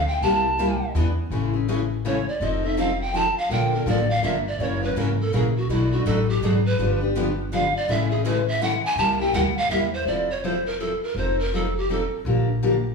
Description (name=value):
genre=acoustic string swing (jazz manouche)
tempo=164 BPM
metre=3/4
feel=swing 62% on 8ths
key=unclear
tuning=A4 = 442 Hz
part: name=breathy mellow pan flute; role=melody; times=0.0-12.2 s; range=E4 to A5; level=-24 LUFS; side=right 1 dB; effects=none
part: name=upright bass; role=bass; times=0.0-12.9 s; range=F1 to E2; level=-26 LUFS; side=left 1 dB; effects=none
part: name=picked steel-string acoustic guitar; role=accompaniment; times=0.2-12.7 s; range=B2 to A4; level=-26 LUFS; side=left 3 dB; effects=none
part: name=picked steel-string acoustic guitar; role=accompaniment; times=0.2-9.8 s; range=B2 to B4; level=-31 LUFS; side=right 2 dB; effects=none
room=moderate large studio reverb, RT60 1.2 s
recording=band playing live in one room, small room reverb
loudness=-20 LUFS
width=side -4 dB against mid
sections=0.0-1.3 A section; 1.3-10.1 A section; 10.1-12.9 A section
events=pan flute solo 0.0-1.3, 1.3-12.9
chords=0.2 C7; 0.9 E7; 1.3 Amaj7; 2.4 F7; 3.5 Bbmaj7; 4.6 F#7; 5.7 Bm7; 6.8 G7; 7.9 Amaj7; 9.0 C7; 10.1 Fmaj7; 11.2 F7; 12.3 Bb6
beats=| 0.22 0.58 0.95 | 1.31 1.68 2.04 | 2.41 2.77 3.14 | 3.50 3.87 4.24 | 4.60 4.96 5.33 | 5.70 6.06 6.42 | 6.79 7.15 7.52 | 7.88 8.24 8.61 | 8.97 9.34 9.70 | 10.07 10.43 10.80 | 11.16 11.53 11.89 | 12.26 12.62